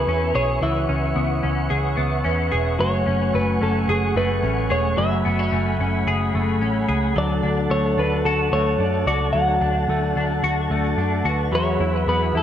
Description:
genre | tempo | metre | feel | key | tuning
dream pop | 110 BPM | 4/4 | straight | D lydian | A4 = 437 Hz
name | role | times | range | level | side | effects
semi-hollow electric guitar | melody | 0.0-12.4 s | G#4 to F#5 | -24 LUFS | equal | harmonic tremolo, digital delay
mellow tonewheel organ | sustained chords | 0.0-12.4 s | A3 to C#6 | -26 LUFS | right 2 dB | chorus vibrato, lush chorus
semi-hollow electric guitar | arpeggios | 0.0-12.4 s | E3 to G#4 | -24 LUFS | left 3 dB | analog chorus, digital delay
vintage muted picked electric bass | bass | 0.0-12.4 s | E1 to F#2 | -23 LUFS | right 1 dB | none
vibraphone with medium hard mallets | texture | 0.0-12.4 s | E4 to F#5 | -34 LUFS | equal | digital delay
room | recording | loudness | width
moderate plate reverb, RT60 2.7 s | none | -18 LUFS | side -10 dB against mid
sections
0.0-12.4 A section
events
none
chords
0.0 C#m7; 2.8 F#madd9; 7.2 D; 11.5 Eadd9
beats
0.07 | 0.62 1.16 1.71 2.25 | 2.80 3.34 3.89 4.43 | 4.98 5.53 6.07 6.62 | 7.16 7.71 8.25 8.80 | 9.34 9.89 10.43 10.98 | 11.53 12.07

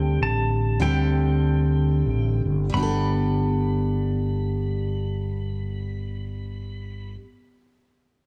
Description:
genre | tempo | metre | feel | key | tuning
acoustic folk duo or small band | 86-103 BPM | 3/4 | swing 59% on 8ths | G major | A4 = 443 Hz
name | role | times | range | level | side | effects
pedal steel guitar | melody | 0.0-7.2 s | G5 to B5 | -36 LUFS | equal | none
picked steel-string acoustic guitar | accompaniment | 0.0-7.3 s | D3 to A4 | -29 LUFS | equal | none
fretless electric bass | bass | 0.0-7.2 s | G1 to D2 | -26 LUFS | equal | none
room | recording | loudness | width
moderate spring reverb, RT60 2.2 s | cassette tape, studio ambience | -24 LUFS | mono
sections
0.0-2.7 A section; 2.7-6.9 B section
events
slowing down 0.0-2.7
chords
0.0 D7sus4; 2.7 Gadd9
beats
0.21 | 0.80 1.42 2.06 | 2.74 3.44 4.13 | 4.83 5.53 6.23

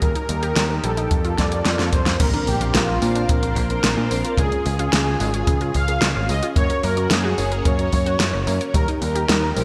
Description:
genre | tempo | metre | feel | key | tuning
synthwave | 110 BPM | 4/4 | straight | unclear | A4 = 440 Hz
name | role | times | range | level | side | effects
soft supersaw | melody | 0.0-9.6 s | F4 to F5 | -27 LUFS | equal | phaser, delay
string machine, full ensemble | sustained chords | 0.0-9.6 s | Bb3 to F5 | -32 LUFS | equal | ensemble chorus, sidechain pumping
unison pluck | arpeggios | 0.0-9.6 s | G3 to Db5 | -32 LUFS | equal | delay
picked electric bass | bass | 0.0-9.6 s | Gb1 to Bb2 | -26 LUFS | equal | none
kick drum | drums | 0.0-8.9 s | none | -24 LUFS | equal | small room ambience
pop drum kit | drums | 0.0-9.6 s | crash cymbal, hi-hat, snare drum | -26 LUFS | equal | small room ambience, gated reverb
swell and impact | sound effects | 1.4-4.4 s | none | -34 LUFS | equal | none
mellow FM electric piano | stabs | 2.2-9.6 s | C4 to Db5 | -32 LUFS | equal | chorus, delay
room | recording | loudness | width
moderate lush hall reverb, RT60 2.3 s | bright 1980s-style digital production | -20 LUFS | mono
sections
0.0-2.2 A section; 2.2-9.6 B section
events
drum fill 1.4-2.2; impact 2.2-4.4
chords
0.0 Eb; 1.1 Fadd9; 2.2 Bbadd9; 4.4 Db; 6.6 Gb; 8.7 Eb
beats
| 0.02 0.56 1.11 1.65 | 2.20 2.74 3.29 3.83 | 4.38 4.93 5.47 6.02 | 6.56 7.11 7.65 8.20 | 8.74 9.29

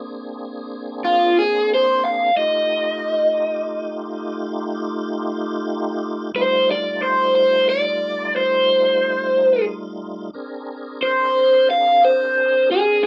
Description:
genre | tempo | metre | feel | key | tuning
blues | 60 BPM (dotted quarters) | 12/8 | straight | F mixolydian | A4 = 440 Hz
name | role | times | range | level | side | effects
tonewheel organ | sustained chords | 0.0-13.1 s | G3 to Bb4 | -30 LUFS | equal | chorus vibrato, slow rotary speaker
raw garage guitar | melody | 1.0-13.1 s | F4 to F5 | -18 LUFS | equal | overdrive, phaser
room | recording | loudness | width
light reverb | rough home demo mix | -19 LUFS | mono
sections
0.0-13.1 A section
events
overdriven electric guitar solo 0.0-13.1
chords
0.0 Bb9; 2.4 F9; 10.3 Bb9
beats
0.36 1.36 | 2.36 3.36 4.36 5.35 | 6.35 7.35 8.35 9.35 | 10.35 11.35 12.35

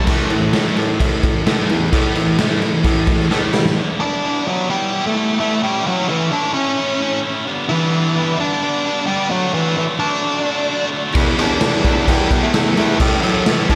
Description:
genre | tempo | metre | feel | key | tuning
quiet-loud alternative rock | 130 BPM | 4/4 | straight | unclear | A4 = 435 Hz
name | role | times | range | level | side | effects
octave-fuzz lead guitar | melody | 0.0, 4.0-13.8 s | E3 to D5 | -21 LUFS | equal | distortion, slapback echo
heavy high-gain guitar | riff | 0.0-3.7, 11.1-13.8 s | A2 to E4 | -26 LUFS | equal | none
tight distorted guitar | riff | 0.0-13.8 s | G2 to E4 | -24 LUFS | equal | distortion, slapback echo
high-gain distorted guitar | riff | 0.1-3.8, 11.1-13.8 s | E2 to A3 | -28 LUFS | equal | none
growling baritone saxophone | bass | 0.1-3.7, 11.2-13.8 s | E2 to G3 | -24 LUFS | equal | none
raw garage drum kit | drums | 0.1-3.8, 11.1-13.8 s | crash cymbal, kick drum, snare drum | -20 LUFS | equal | none
room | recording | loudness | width
moderate recital hall reverb, RT60 1.5 s, studio reverb | big arena sound | -17 LUFS | mono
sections
0.1-3.8 A section; 3.8-13.8 B section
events
drum fill 3.3-3.8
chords
0.1 A5; 3.8 Em7; 5.6 A; 7.5 G; 9.3 D; 11.2 Em7; 13.0 A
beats
| 0.07 0.53 0.99 1.46 | 1.92 2.38 2.85 3.31 | 3.77 4.23 4.69 5.16 | 5.62 6.08 6.54 7.00 | 7.46 7.93 8.39 8.85 | 9.31 9.78 10.24 10.70 | 11.16 11.62 12.09 12.55 | 13.01 13.47

